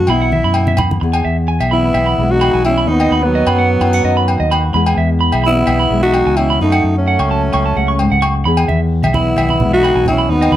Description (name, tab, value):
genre	highlife guitar band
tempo	129 BPM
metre	4/4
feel	straight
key	E major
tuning	A4 = 439 Hz
part	growling alto saxophone	melody	0.0-10.6 s	B3 to F#4	-16 LUFS	equal	plate reverb
part	nylon-string guitar	accompaniment	0.0-10.6 s	E2 to G#4	-21 LUFS	left 6 dB	none
part	fingered electric bass	bass	0.0-10.6 s	B1 to F#2	-16 LUFS	equal	none
part	electric guitar at the edge of break-up	arpeggios	0.1-10.6 s	D#5 to C#6	-19 LUFS	right 4 dB	slapback echo
part	agogo bells	percussion	0.1-10.5 s	none	-22 LUFS	left 2 dB	none
part	congas	percussion	0.3-1.0, 8.7-10.6 s	none	-20 LUFS	right 1 dB	none
part	breathy trumpet	second line	1.7-10.6 s	F#3 to D#4	-22 LUFS	right 2 dB	slapback echo
room	moderate studio ambience, RT60 0.5 s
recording	none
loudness	-11 LUFS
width	side -12 dB against mid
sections	0.0-1.0 A section; 1.0-10.6 B section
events	none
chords	0.1 Bsus4; 1.0 E; 2.9 B/D#; 4.7 E; 6.6 F#m; 8.5 E